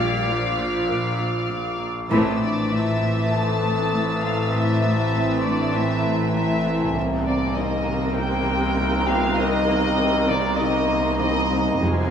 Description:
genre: cinematic, suspense film score.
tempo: 99 BPM.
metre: 4/4.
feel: straight.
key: unclear.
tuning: A4 = 440 Hz.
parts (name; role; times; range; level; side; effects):
warm studio violin section; melody; 0.0-11.8 s; D5 to A5; -27 LUFS; left 2 dB; none.
warm chamber violin section; second line; 0.0-12.1 s; Ab3 to F5; -28 LUFS; equal; none.
warm chamber viola section; accompaniment; 0.0-12.1 s; C3 to G3; -28 LUFS; equal; none.
deep dark ambient pad; sustained chords; 0.0-12.1 s; C4 to D6; -31 LUFS; right 3 dB; none.
warm chamber cello section; riff; 0.0-12.0 s; F2 to C4; -31 LUFS; equal; none.
clear chamber double bass section; bass; 0.0-12.1 s; F1 to C2; -29 LUFS; right 1 dB; none.
warm chamber cello section; bass; 0.0-12.1 s; C2 to Bb2; -30 LUFS; right 1 dB; none.
overtone-sweeping drone; drone; 0.0-12.1 s; A1 to F2; -27 LUFS; equal; chorus, built-in reverb.
dark baby grand piano; texture; 0.0-12.1 s; C4 to B5; -35 LUFS; left 1 dB; none.
warm chamber violin section; texture; 0.0-6.6, 11.8-12.1 s; E6 to C7; -34 LUFS; left 2 dB; none.
dark French horn section; sustained chords; 2.4-11.8 s; D4 to D5; -30 LUFS; left 3 dB; none.
room: moderate scoring stage reverb, RT60 1.6 s.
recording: studio reverb.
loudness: -19 LUFS.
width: side -8 dB against mid.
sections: 0.0-2.1 A section; 2.1-12.1 B section.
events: band accent 2.1-2.7.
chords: 0.0 Bb; 2.1 Am; 7.0 Cm7.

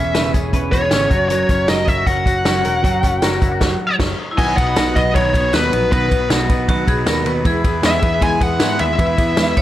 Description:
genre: jangly indie pop.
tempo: 156 BPM.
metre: 4/4.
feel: straight.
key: B major.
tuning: A4 = 441 Hz.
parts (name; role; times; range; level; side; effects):
high-gain lead guitar; melody; 0.0-9.6 s; B4 to G#5; -19 LUFS; left 1 dB; distortion, tape echo.
clean electric guitar; accompaniment; 0.0-9.6 s; B2 to C#5; -24 LUFS; right 5 dB; tube saturation.
twelve-string electric guitar; arpeggios; 0.0-9.6 s; B2 to B4; -23 LUFS; left 4 dB; lush chorus, tape echo.
vintage muted picked electric bass; bass; 0.0-9.6 s; E1 to G#2; -23 LUFS; equal; none.
vintage drum kit; drums; 0.1-9.6 s; crash cymbal, hi-hat, kick drum, ride cymbal, snare drum; -18 LUFS; equal; none.
tambourine; percussion; 0.2-9.6 s; none; -37 LUFS; right 6 dB; none.
vibraphone with hard mallets; second line; 4.3-9.6 s; D#4 to C#5; -26 LUFS; equal; none.
room: light reverb, small room ambience.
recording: none.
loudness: -14 LUFS.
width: side -13 dB against mid.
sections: 0.0-4.4 A section; 4.4-9.6 B section.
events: band accent 3.6-4.4.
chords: 0.0 E6; 1.1 F#; 4.4 B; 7.5 E.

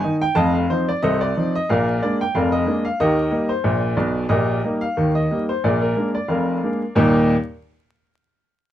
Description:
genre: ragtime piano.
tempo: 91 BPM.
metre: 2/4.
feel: swing 54% on 16ths.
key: Eb major.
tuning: A4 = 440 Hz.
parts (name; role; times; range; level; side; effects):
bright upright piano; solo; 0.0-7.3 s; F1 to A5; -17 LUFS; equal; none.
room: little or no reverb.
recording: close, detailed microphones, vinyl crackle.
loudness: -17 LUFS.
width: side -12 dB against mid.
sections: 0.0-7.0 A section; 7.0-8.3 B section.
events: none.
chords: 0.4 F7; 1.7 Bb7; 3.0 Eb; 4.3 Eb/Bb; 5.6 Bb7; 7.0 Eb.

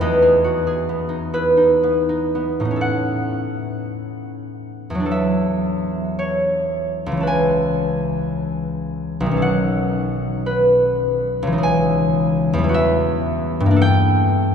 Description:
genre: classical, solo harp piece.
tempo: 38-58 BPM (dotted quarters).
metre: 6/8.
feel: rubato.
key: A major.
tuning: A4 = 440 Hz.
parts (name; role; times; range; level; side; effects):
concert harp; solo; 0.0-14.5 s; B1 to A5; -17 LUFS; equal; none.
room: wet cathedral reverb, RT60 4.9 s.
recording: recorded in a church or concert hall.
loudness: -17 LUFS.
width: side -7 dB against mid.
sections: 0.0-2.8 A section; 2.8-14.5 B section.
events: none.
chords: 0.0 Emaj7; 2.8 A69; 5.1 E11; 7.3 C#m7; 9.4 B13; 11.6 C#madd9; 12.7 Emadd9; 13.8 Gmadd9.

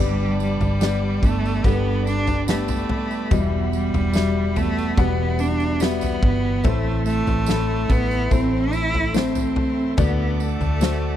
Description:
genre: pop ballad.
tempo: 72 BPM.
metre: 4/4.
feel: straight.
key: G major.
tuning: A4 = 441 Hz.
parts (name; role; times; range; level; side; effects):
clear cello; melody; 0.0-11.2 s; G3 to E4; -24 LUFS; right 1 dB; none.
felt-muted upright piano; accompaniment; 0.0-11.2 s; G2 to F#5; -27 LUFS; left 12 dB; none.
bright tonewheel organ; sustained chords; 0.0-11.2 s; G3 to D6; -35 LUFS; right 1 dB; fast rotary speaker.
picked steel-string acoustic guitar; arpeggios; 0.0-11.2 s; E2 to G4; -28 LUFS; right 8 dB; none.
vintage muted fingered electric bass; bass; 0.0-11.2 s; E1 to D2; -24 LUFS; equal; none.
tambourine; percussion; 0.4-11.0 s; none; -40 LUFS; right 20 dB; none.
huge arena drum kit; drums; 0.6-11.0 s; kick drum, snare drum, toms; -23 LUFS; equal; none.
room: little or no reverb.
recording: dry, close 1970s-style studio recording.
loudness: -18 LUFS.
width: side -11 dB against mid.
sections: 0.0-11.2 A section.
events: none.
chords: 0.0 G; 3.3 Emadd9; 6.7 Am; 10.0 D.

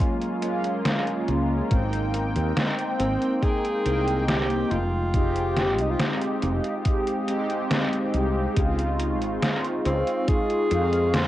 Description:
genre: vaporwave.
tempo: 70 BPM.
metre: 4/4.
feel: straight.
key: unclear.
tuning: A4 = 440 Hz.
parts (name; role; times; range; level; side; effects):
mellow synth brass; accompaniment; 0.0-11.3 s; Ab3 to G5; -26 LUFS; equal; wide subtle chorus, cassette tape, analog delay.
warbly tape-like pad; sustained chords; 0.0-11.3 s; Gb3 to Eb6; -34 LUFS; left 1 dB; chorus, built-in reverb, vintage 12-bit sampler grit, cassette tape.
detuned 8-bit digital drum machine; drums; 0.0-11.3 s; hi-hat, snare drum; -27 LUFS; equal; cassette tape.
electronic kick drum; drums; 0.0-10.5 s; none; -24 LUFS; equal; overdrive, cassette tape.
woody fretless electric bass; bass; 1.3-11.3 s; F1 to F2; -26 LUFS; equal; none.
breathy alto saxophone; melody; 3.0-11.3 s; C4 to Ab4; -28 LUFS; equal; vintage 12-bit sampler grit, tape echo.
room: moderate spring reverb, RT60 2.5 s.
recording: home recording on cassette.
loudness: -22 LUFS.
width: side -14 dB against mid.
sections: 0.0-11.3 A section.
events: none.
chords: 0.0 Gbmaj9; 1.7 Abmaj9; 4.7 Fm9; 8.6 Dbmaj7.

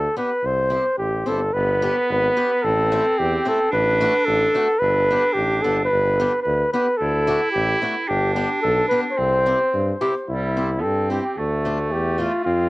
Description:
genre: alpine folk, alpine dance band.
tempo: 110 BPM.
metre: 2/4.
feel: straight.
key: C major.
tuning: A4 = 440 Hz.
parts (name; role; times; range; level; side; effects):
mellow flugelhorn; melody; 0.0-12.7 s; E4 to C5; -20 LUFS; equal; cassette tape, plate reverb, tape echo.
clear tuba; bass; 0.0-12.7 s; G1 to G2; -25 LUFS; equal; none.
picked swing-style acoustic guitar; accompaniment; 0.2-12.3 s; A3 to G4; -26 LUFS; left 2 dB; cassette tape, plate reverb.
bright clarinet; second line; 1.5-12.7 s; G3 to E4; -26 LUFS; right 2 dB; cassette tape.
room: moderate booth ambience, RT60 0.2 s.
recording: home recording on cassette.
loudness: -18 LUFS.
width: side -20 dB against mid.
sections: 0.0-1.5 A section; 1.5-10.3 A section; 10.3-12.7 B section.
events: none.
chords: 0.4 C; 1.5 G; 2.6 Am; 3.7 D/A; 4.8 G; 7.0 D; 8.1 G; 9.2 C; 11.4 Dm.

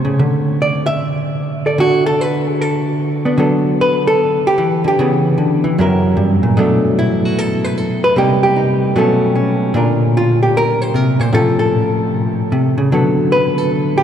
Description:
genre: solo jazz.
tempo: 151 BPM.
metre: 4/4.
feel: swing 65% on 8ths.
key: D major.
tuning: A4 = 440 Hz.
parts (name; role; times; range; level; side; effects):
hollow-body jazz guitar; solo; 0.0-14.0 s; F#2 to E5; -12 LUFS; equal; none.
room: wet cathedral reverb, RT60 6.9 s.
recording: recorded in a church or concert hall.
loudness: -12 LUFS.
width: side -9 dB against mid.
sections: 0.0-3.4 A section; 3.4-14.0 B section.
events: hollow-body jazz guitar solo 0.0-3.4.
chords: 0.2 D5; 3.4 D6; 5.0 C#m7b5; 5.8 F#7; 6.6 Bm7; 8.1 Cm7; 8.9 Bsus2; 9.7 Bb; 11.3 Aaug; 12.9 D6.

